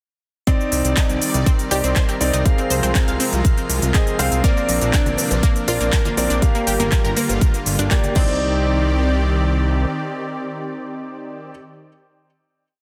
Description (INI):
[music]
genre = progressive house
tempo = 121 BPM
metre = 4/4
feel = straight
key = C minor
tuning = A4 = 439 Hz
[part]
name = supersaw pad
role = sustained chords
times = 0.5-11.5 s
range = C3 to D5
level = -29 LUFS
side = equal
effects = sidechain pumping
[part]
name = analog pluck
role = arpeggios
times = 0.5-8.6 s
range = Bb3 to F6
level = -29 LUFS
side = equal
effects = chorus, sidechain pumping, delay
[part]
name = clear grand piano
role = stabs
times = 0.5-11.5 s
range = Bb3 to F5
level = -26 LUFS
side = equal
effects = sidechain pumping, delay
[part]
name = big-room dance drum kit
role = drums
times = 0.5-8.3 s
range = cabasa, crash cymbal, handclaps, hi-hat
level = -27 LUFS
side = equal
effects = overdrive
[part]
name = electronic kick drum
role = drums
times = 0.5-8.3 s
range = none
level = -20 LUFS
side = equal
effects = none
[part]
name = drifting glass-harmonics texture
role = texture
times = 1.3-8.4 s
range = Bb4 to Bb5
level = -37 LUFS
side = equal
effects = none
[part]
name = fat analog bass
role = bass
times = 0.7-9.9 s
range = G1 to C2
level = -23 LUFS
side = equal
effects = sidechain pumping
[part]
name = congas and cowbell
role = percussion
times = 5.1-8.3 s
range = none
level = -33 LUFS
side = equal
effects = sidechain pumping on perc
[sound]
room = light reverb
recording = dense, heavily limited modern master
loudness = -18 LUFS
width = mono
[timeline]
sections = 0.5-8.4 drop; 8.4-12.4 final hit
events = drop 0.5-8.4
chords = 0.5 Cmadd9; 2.5 Fm/C; 4.4 Bbadd9; 6.4 Gm7; 8.2 Cmadd9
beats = | 0.47 0.97 1.46 1.96 | 2.46 2.95 3.45 3.94 | 4.44 4.93 5.43 5.93 | 6.42 6.92 7.41 7.91 | 8.41 8.90 9.40 9.89 | 10.39 10.88 11.38